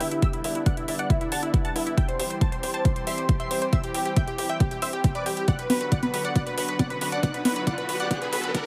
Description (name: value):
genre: uplifting trance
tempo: 137 BPM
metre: 4/4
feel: straight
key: unclear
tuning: A4 = 440 Hz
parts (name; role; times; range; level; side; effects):
- supersaw stab; melody; 0.0-8.6 s; E4 to C6; -32 LUFS; equal; sidechain pumping, low-pass filter, dub echo
- plucky unison lead; second line; 0.0-8.6 s; E5 to C7; -38 LUFS; equal; ensemble chorus, sidechain pumping, dub echo
- lush unison pad; sustained chords; 0.0-8.7 s; D3 to G4; -36 LUFS; equal; chorus, sidechain pumping
- tight sequencer bass; bass; 0.0-8.5 s; G1 to E2; -42 LUFS; equal; none
- electronic hi-hat and congas; drums; 0.0-8.6 s; none; -32 LUFS; equal; sidechain pumping on hats, sidechain pumping on perc
- electronic kick drum; drums; 0.2-8.6 s; none; -26 LUFS; equal; overdrive
- riser; sound effects; 6.5-8.7 s; none; -37 LUFS; equal; none
room: light reverb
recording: high-pass filter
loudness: -25 LUFS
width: mono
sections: 0.0-8.7 A section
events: build-up 0.0-8.7; filter sweep on supersaw synth 0.0-8.7; filter sweep on digital synth lead 0.0-8.7; filter sweep 0.0-8.7; drum fill 5.5-8.7; riser 6.5-8.7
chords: 0.0 Em7; 2.0 C; 5.5 Bm